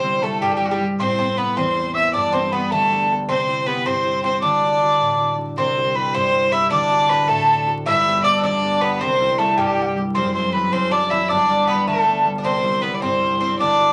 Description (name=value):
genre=celtic folk, Celtic jig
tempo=105 BPM (dotted quarters)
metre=6/8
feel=straight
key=unclear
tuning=A4 = 441 Hz
part: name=clear fiddle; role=melody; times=0.0-13.9 s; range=F#4 to E5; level=-25 LUFS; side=equal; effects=none
part: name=Irish bouzouki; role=second line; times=0.0-13.9 s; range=G3 to E4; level=-25 LUFS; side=equal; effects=none
part: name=tin whistle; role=second line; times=0.0-13.9 s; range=F#5 to E6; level=-24 LUFS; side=equal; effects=none
part: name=concert harp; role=accompaniment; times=0.0-13.9 s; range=F#1 to B4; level=-27 LUFS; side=equal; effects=none
room=wet studio ambience, RT60 0.5 s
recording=vinyl crackle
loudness=-19 LUFS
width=mono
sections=0.0-5.6 A section; 5.6-13.9 A section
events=none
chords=0.0 C; 1.0 Amadd9; 2.1 G; 3.3 C; 4.4 D; 5.6 C; 6.7 D7; 7.9 Gadd9; 9.0 C; 10.2 F#m7b5; 11.3 G; 12.4 C